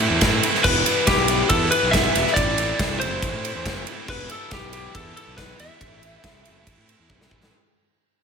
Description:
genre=indie rock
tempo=140 BPM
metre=4/4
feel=straight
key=unclear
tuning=A4 = 440 Hz
part: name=overdriven electric guitar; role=riff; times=0.0-7.5 s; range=E2 to E4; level=-29 LUFS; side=left 8 dB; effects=none
part: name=scooped high-gain guitar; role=riff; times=0.0-7.5 s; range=E2 to E4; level=-27 LUFS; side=right 8 dB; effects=distortion, wide subtle chorus, tape echo
part: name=fuzz fingered electric bass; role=bass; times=0.0-7.5 s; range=E1 to A2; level=-28 LUFS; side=equal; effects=overdrive
part: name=big rock drum kit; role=drums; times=0.2-7.5 s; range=crash cymbal, kick drum, ride cymbal, snare drum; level=-22 LUFS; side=right 1 dB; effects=none
part: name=lightly driven lead guitar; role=melody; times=0.6-7.3 s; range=G4 to E5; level=-24 LUFS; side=left 2 dB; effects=tape echo
room=light reverb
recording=none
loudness=-17 LUFS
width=side -6 dB against mid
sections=0.0-7.5 A section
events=fade-out 0.0-7.5; drum fill 7.1-7.5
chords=0.0 Am; 0.6 Em; 2.4 Am; 4.1 Em; 5.8 Am

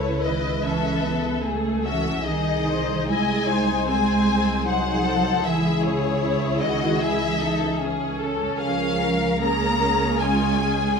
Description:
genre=classical, slow romantic movement for string orchestra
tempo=76 BPM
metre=4/4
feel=rubato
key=C# minor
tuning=A4 = 441 Hz
part: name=warm studio violin section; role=melody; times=0.0-11.0 s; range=C#5 to Bb5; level=-25 LUFS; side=left 6 dB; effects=none
part: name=dark studio violin section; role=second line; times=0.0-11.0 s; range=E4 to D#5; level=-29 LUFS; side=left 3 dB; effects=none
part: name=warm studio viola section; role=accompaniment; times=0.0-11.0 s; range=A3 to B#4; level=-27 LUFS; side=equal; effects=none
part: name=warm studio cello section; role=bass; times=0.0-11.0 s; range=C#3 to Bb3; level=-26 LUFS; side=right 2 dB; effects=none
part: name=warm studio double bass section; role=bass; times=0.0-10.9 s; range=B#1 to C#2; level=-28 LUFS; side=right 4 dB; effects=none
room=moderate scoring stage reverb, RT60 1.5 s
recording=none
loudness=-20 LUFS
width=side -5 dB against mid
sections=0.0-11.0 A section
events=none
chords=0.0 A/C#; 2.3 G#/B#; 5.5 C#m; 8.6 Db6

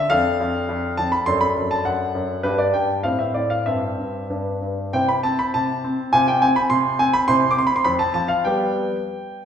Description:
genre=classical-period piano sonatina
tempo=93-105 BPM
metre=2/4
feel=rubato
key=C major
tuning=A4 = 440 Hz
part: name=clear concert grand piano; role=solo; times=0.0-9.4 s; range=F2 to D6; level=-18 LUFS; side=equal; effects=none
room=wet recital hall reverb, RT60 1.6 s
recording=heard from further back in the room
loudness=-18 LUFS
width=side -8 dB against mid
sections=0.0-4.9 A section; 4.9-9.4 B section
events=none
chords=0.1 Dm/F; 1.3 D/F#; 2.4 G5; 3.0 Am; 3.7 C/G; 4.3 G; 4.9 C; 6.1 F5/C; 7.3 C; 7.9 F5; 8.5 G

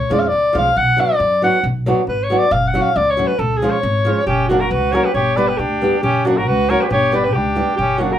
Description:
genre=balkan folk, Balkan wedding band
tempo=137 BPM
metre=2/4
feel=swing 54% on 16ths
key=C# phrygian dominant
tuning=A4 = 442 Hz
part: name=warm alto saxophone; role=melody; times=0.0-8.2 s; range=F#4 to F#5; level=-17 LUFS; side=left 1 dB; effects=none
part: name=upright bass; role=bass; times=0.0-8.2 s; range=F#1 to F#2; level=-23 LUFS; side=equal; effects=none
part: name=darbuka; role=percussion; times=0.0-8.2 s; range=none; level=-26 LUFS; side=left 1 dB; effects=none
part: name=flamenco guitar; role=accompaniment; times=0.1-8.1 s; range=E#3 to G4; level=-19 LUFS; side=equal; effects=none
part: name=warm trumpet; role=second line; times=4.3-8.2 s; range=C#4 to B4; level=-22 LUFS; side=right 3 dB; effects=none
room=moderate studio ambience, RT60 0.4 s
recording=band playing live in one room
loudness=-14 LUFS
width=side -10 dB against mid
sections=0.0-4.3 A section; 4.3-8.2 B section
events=alto saxophone solo 0.0-4.3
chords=0.0 C#; 0.8 Bm; 2.5 F#m; 3.4 C#; 4.3 F#; 5.2 G; 6.0 F#; 6.9 G

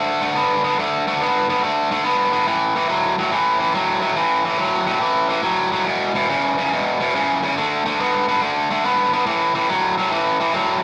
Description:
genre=blues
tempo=141 BPM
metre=4/4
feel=swing 67% on 8ths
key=A major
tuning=A4 = 441 Hz
part: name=biting overdriven guitar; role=solo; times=0.0-10.8 s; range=E2 to B3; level=-19 LUFS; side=equal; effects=none
room=moderate club reverb, RT60 0.6 s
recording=lossy compression artefacts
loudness=-19 LUFS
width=mono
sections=0.0-10.8 A section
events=none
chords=0.0 D5; 2.5 A5; 5.9 E5; 7.6 D5; 9.3 A5

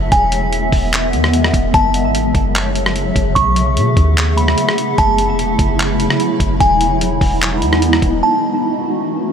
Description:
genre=hip hop, atmospheric cloud-rap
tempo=148 BPM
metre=4/4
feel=half-time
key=F# dorian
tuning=A4 = 436 Hz
part: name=granular cloud pad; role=sustained chords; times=0.0-9.3 s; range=C#3 to E5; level=-17 LUFS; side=equal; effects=built-in reverb, sidechain pumping
part: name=soft 808-style bass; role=bass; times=0.0-8.2 s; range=E1 to B2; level=-18 LUFS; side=equal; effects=none
part: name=glassy synth bell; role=melody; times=0.1-8.6 s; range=G#5 to C#6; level=-18 LUFS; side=equal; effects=chorus, low-pass filter, tape echo
part: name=dusty soul sampler-style drum kit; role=drums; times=0.1-8.1 s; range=handclaps, hi-hat, kick drum, rim click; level=-18 LUFS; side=equal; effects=none
room=light reverb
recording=none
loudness=-12 LUFS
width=side -7 dB against mid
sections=0.0-8.2 A section; 8.2-9.3 B section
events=none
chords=0.1 Emaj7; 1.7 F#m7; 3.4 B9sus4; 5.0 F#m7; 6.6 Emaj7; 8.2 F#m7

